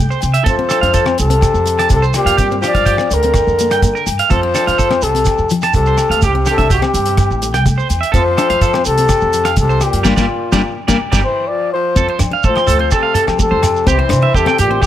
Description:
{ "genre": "highlife guitar band", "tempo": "125 BPM", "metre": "4/4", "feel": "straight", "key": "F major", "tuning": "A4 = 441 Hz", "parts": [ { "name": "picked plugged-in steel-string acoustic guitar", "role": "accompaniment", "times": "0.0-14.9 s", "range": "F3 to D4", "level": "-22 LUFS", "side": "left 5 dB", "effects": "none" }, { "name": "upright bass", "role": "bass", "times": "0.0-14.8 s", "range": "G1 to F3", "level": "-18 LUFS", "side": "right 1 dB", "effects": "none" }, { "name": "electric guitar at the edge of break-up", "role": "arpeggios", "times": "0.1-14.9 s", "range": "G4 to C6", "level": "-19 LUFS", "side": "right 8 dB", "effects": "spring reverb" }, { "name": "shekere", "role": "percussion", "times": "0.1-14.9 s", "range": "none", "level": "-20 LUFS", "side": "right 3 dB", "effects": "none" }, { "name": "cloth-damped thuddy drum kit", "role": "drums", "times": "0.2-14.9 s", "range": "hi-hat, kick drum, rim click, snare drum", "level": "-18 LUFS", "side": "equal", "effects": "none" }, { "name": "agogo bells", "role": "percussion", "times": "0.2-14.9 s", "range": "none", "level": "-25 LUFS", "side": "left 14 dB", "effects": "none" }, { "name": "breathy trumpet", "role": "melody", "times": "0.5-14.9 s", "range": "F4 to D5", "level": "-16 LUFS", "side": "left 1 dB", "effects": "none" }, { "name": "growling tenor saxophone", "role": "second line", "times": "0.5-14.8 s", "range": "Bb2 to F3", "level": "-23 LUFS", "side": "left 10 dB", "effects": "none" } ], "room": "small room ambience", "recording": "none", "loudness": "-11 LUFS", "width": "side -11 dB against mid", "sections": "0.0-12.0 A section; 12.0-14.9 B section", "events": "band accent 10.1-12.0; drum fill 11.5-12.0", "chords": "0.5 F; 2.4 Gm7; 4.3 F; 6.2 C; 8.1 F; 10.1 Gm7; 12.0 F; 13.9 C", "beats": "| 0.46 0.94 1.43 1.91 | 2.38 2.87 3.35 3.83 | 4.30 4.78 5.26 5.74 | 6.22 6.70 7.18 7.66 | 8.14 8.62 9.10 9.58 | 10.05 10.53 11.01 11.49 | 11.97 12.45 12.92 13.40 | 13.88 14.36 14.83" }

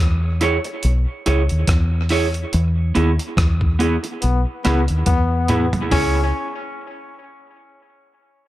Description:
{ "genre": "dub reggae", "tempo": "71 BPM", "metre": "4/4", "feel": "swing 56% on 16ths", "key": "C# minor", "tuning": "A4 = 440 Hz", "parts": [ { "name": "deep dub fingered electric bass", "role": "bass", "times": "0.0-6.3 s", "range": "B1 to E2", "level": "-18 LUFS", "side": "equal", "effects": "none" }, { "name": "electric guitar at the edge of break-up", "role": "accompaniment", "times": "0.4-6.2 s", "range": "B3 to C#5", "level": "-22 LUFS", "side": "right 3 dB", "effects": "tape echo" }, { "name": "breakbeat sampler-style drum kit", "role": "drums", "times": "0.4-6.1 s", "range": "hi-hat, kick drum, rim click, toms", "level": "-21 LUFS", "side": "equal", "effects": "none" }, { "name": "bright trombone", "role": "second line", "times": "4.2-6.2 s", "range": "B3 to C#4", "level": "-24 LUFS", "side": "left 5 dB", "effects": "tape echo" } ], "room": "light reverb, digital ambience", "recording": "none", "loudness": "-16 LUFS", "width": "side -15 dB against mid", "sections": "0.0-5.9 A section; 5.9-8.5 B section", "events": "band accent 2.5-5.9; drum fill 5.1-5.9", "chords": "0.0 C#m", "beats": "0.83 1.68 | 2.52 3.37 4.22 5.07 | 5.92" }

